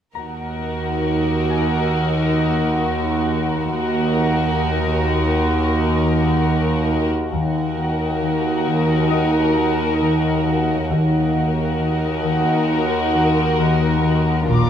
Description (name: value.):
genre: cinematic, suspense film score.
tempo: 67 BPM.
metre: 4/4.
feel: straight.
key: Eb minor.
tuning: A4 = 445 Hz.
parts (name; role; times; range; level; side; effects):
concert harp; texture; 0.1-13.0 s; Eb4 to Bb5; -32 LUFS; left 6 dB; none.
dark studio violin section; melody; 0.2-14.7 s; Bb4; -26 LUFS; left 2 dB; none.
warm studio violin section; second line; 0.2-14.7 s; F4 to Gb4; -24 LUFS; equal; none.
dark studio viola section; accompaniment; 0.2-14.7 s; D4 to Eb4; -24 LUFS; right 1 dB; none.
warm studio cello section; bass; 0.2-14.7 s; Eb2 to Bb2; -25 LUFS; right 3 dB; none.
warm studio double bass section; bass; 0.2-14.7 s; Bb1 to Eb2; -24 LUFS; right 4 dB; none.
overtone-sweeping drone; drone; 0.9-14.7 s; Eb2; -25 LUFS; left 1 dB; chorus, built-in reverb.
folk marimba with soft mallets; riff; 7.3-14.7 s; Bb2 to Eb4; -22 LUFS; left 3 dB; none.
warm studio violin section; texture; 14.5-14.7 s; Bb5 to D6; -24 LUFS; left 6 dB; none.
room: wet concert hall reverb, RT60 2.0 s.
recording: none.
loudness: -17 LUFS.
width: side -9 dB against mid.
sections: 0.2-7.3 A section; 7.3-14.7 B section.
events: none.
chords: 0.2 Ebm.